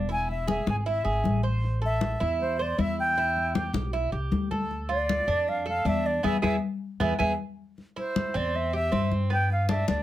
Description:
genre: latin, Cuban son and guajira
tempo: 156 BPM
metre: 4/4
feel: straight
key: unclear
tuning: A4 = 440 Hz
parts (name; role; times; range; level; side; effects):
- Cuban tres; arpeggios; 0.0-10.0 s; B3 to C5; -30 LUFS; right 4 dB; none
- upright bass; bass; 0.0-10.0 s; E1 to G2; -29 LUFS; equal; none
- reedy concert flute; melody; 0.1-10.0 s; C5 to G#5; -28 LUFS; equal; none
- congas; percussion; 0.1-10.0 s; none; -30 LUFS; left 4 dB; none
room: moderate studio ambience, RT60 0.5 s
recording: none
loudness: -24 LUFS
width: side -13 dB against mid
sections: 0.0-7.8 A section; 7.8-10.0 A section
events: band accent 6.2-7.8; drum fill 7.2-7.8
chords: 0.1 E; 1.6 Am; 3.2 Em; 4.7 Dm; 6.2 E; 7.8 C/E; 9.3 G

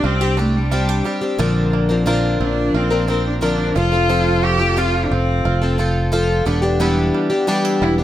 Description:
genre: pop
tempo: 89 BPM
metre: 4/4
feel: straight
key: unclear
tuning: A4 = 439 Hz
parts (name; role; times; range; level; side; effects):
- clear cello; melody; 0.0-7.9 s; G3 to G4; -21 LUFS; equal; none
- picked plugged-in twelve-string acoustic guitar; accompaniment; 0.0-8.0 s; Bb2 to Bb4; -18 LUFS; left 2 dB; none
- bluegrass banjo; arpeggios; 0.0-8.0 s; D3 to G4; -28 LUFS; right 9 dB; none
- fingered electric bass; bass; 0.0-8.0 s; E1 to C2; -20 LUFS; right 1 dB; none
room: light reverb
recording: none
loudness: -15 LUFS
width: side -12 dB against mid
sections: 0.0-8.0 A section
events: none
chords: 0.0 Csus2; 1.4 Bbadd9; 3.8 F; 6.5 Em7

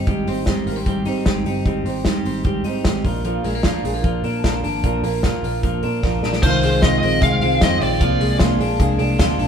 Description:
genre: jangly indie pop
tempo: 151 BPM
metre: 4/4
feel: straight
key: unclear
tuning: A4 = 440 Hz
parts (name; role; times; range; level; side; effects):
- fingerpicked steel-string acoustic guitar; accompaniment; 0.0-9.5 s; Bb2 to Bb4; -24 LUFS; right 6 dB; none
- twelve-string electric guitar; arpeggios; 0.0-9.5 s; Eb3 to F4; -24 LUFS; left 4 dB; spring reverb
- vintage muted picked electric bass; bass; 0.0-9.5 s; G1 to Bb2; -24 LUFS; equal; none
- loose indie drum kit; drums; 0.1-9.5 s; crash cymbal, hi-hat, kick drum, ride cymbal, snare drum; -21 LUFS; equal; none
- smooth overdriven lead guitar; melody; 6.4-8.4 s; C5 to F5; -20 LUFS; left 1 dB; none
room: moderate studio reverb, RT60 0.9 s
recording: band playing live in one room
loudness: -17 LUFS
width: side -7 dB against mid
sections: 0.0-6.4 A section; 6.4-9.5 B section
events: drum fill 6.0-6.4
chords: 0.1 Abmaj7; 3.0 Bb; 6.4 Fm7; 8.0 Bb7

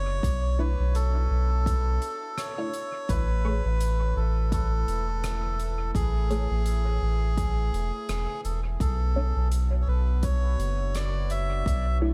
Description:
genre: ambient dub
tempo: 84 BPM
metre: 4/4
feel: swing 57% on 16ths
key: B dorian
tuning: A4 = 444 Hz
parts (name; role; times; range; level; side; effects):
- melodica; melody; 0.0-12.0 s; G#4 to E5; -35 LUFS; equal; dub echo
- warm analog pad; sustained chords; 0.0-12.1 s; A3 to E5; -46 LUFS; equal; chorus
- soft dub sub bass; bass; 0.0-12.1 s; E1 to B1; -27 LUFS; equal; none
- electronic kick drum; drums; 0.2-11.8 s; none; -33 LUFS; equal; none
- soft-mallet drum kit; drums; 0.2-11.8 s; hi-hat, rim click; -44 LUFS; equal; dub echo
- filtered dub chord stab; stabs; 0.6-12.1 s; A3 to C#5; -38 LUFS; equal; phaser, ensemble chorus, dub echo
room: small room ambience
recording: echo-heavy mix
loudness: -27 LUFS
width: mono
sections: 0.0-12.1 A section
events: fade-in on analog synth pad 0.0-12.1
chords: 0.0 Bm11; 3.1 Amaj7; 8.8 Bm11

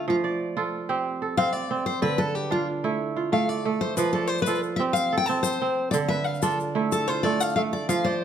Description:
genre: west african traditional, West African string and xylophone music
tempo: 123 BPM (dotted quarters)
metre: 12/8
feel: straight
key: unclear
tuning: A4 = 437 Hz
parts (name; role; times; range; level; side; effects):
- picked steel-string acoustic guitar; melody; 0.0-8.2 s; F4 to A5; -26 LUFS; left 4 dB; none
- kora; arpeggios; 0.0-8.2 s; D3 to D5; -25 LUFS; right 4 dB; none
- tube shaker; percussion; 4.0-8.0 s; none; -36 LUFS; left 8 dB; none
room: wet recital hall reverb, RT60 1.3 s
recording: none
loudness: -23 LUFS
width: side -9 dB against mid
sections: 0.0-8.2 A section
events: steel-string acoustic guitar solo 0.0-8.2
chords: 0.1 F; 2.0 Dm; 4.0 F; 5.9 Dm

